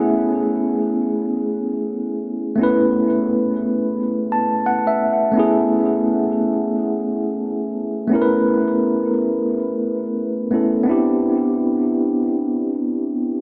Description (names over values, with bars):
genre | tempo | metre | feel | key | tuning
R&B | 87 BPM | 4/4 | swing 61% on 16ths | A major | A4 = 440 Hz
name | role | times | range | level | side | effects
tine electric piano | solo | 0.0-13.4 s | A3 to A5 | -20 LUFS | equal | tape echo
room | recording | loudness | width
wet lush hall reverb, RT60 1.5 s | dreamy mix soaked in reverb | -20 LUFS | mono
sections
0.0-13.4 A section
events
tine electric piano fill 4.0-5.3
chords
0.0 Amaj9; 10.9 Cmaj9